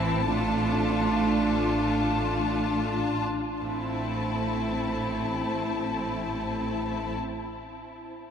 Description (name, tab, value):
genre	classical, slow romantic movement for string orchestra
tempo	free time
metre	none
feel	none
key	A minor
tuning	A4 = 441 Hz
part	rich studio violin section	melody	0.0-7.2 s	A5	-34 LUFS	left 5 dB	none
part	rich studio violin section	second line	0.0-7.2 s	E4 to F4	-32 LUFS	left 4 dB	none
part	rich studio viola section	accompaniment	0.0-7.2 s	C4 to D4	-31 LUFS	equal	none
part	clear studio cello section	bass	0.0-7.2 s	E3 to A3	-31 LUFS	right 5 dB	none
part	dark studio double bass section	bass	0.0-7.2 s	A1	-33 LUFS	right 2 dB	none
room	wet huge ambient reverb, RT60 8.3 s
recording	in a vast, echoing space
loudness	-25 LUFS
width	side -8 dB against mid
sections	0.0-3.6 A section; 3.6-7.2 B section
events	slowing down 0.0-3.6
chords	0.3 Dm/A; 3.6 Am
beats	free time